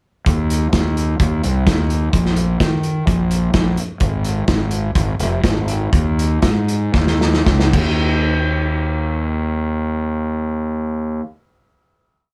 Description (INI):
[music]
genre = indie rock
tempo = 108-129 BPM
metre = 4/4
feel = straight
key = unclear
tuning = A4 = 440 Hz
[part]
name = fuzz fingered electric bass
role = bass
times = 0.3-11.2 s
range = F1 to Eb3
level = -20 LUFS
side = equal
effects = overdrive
[part]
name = loose indie drum kit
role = drums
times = 0.3-7.9 s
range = crash cymbal, hi-hat, kick drum, snare drum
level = -21 LUFS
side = equal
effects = none
[sound]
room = light reverb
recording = none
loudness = -18 LUFS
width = mono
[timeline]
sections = 0.3-8.0 interlude; 8.0-12.3 final hit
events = slowing down 4.0-8.0; drum fill 7.0-8.0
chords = none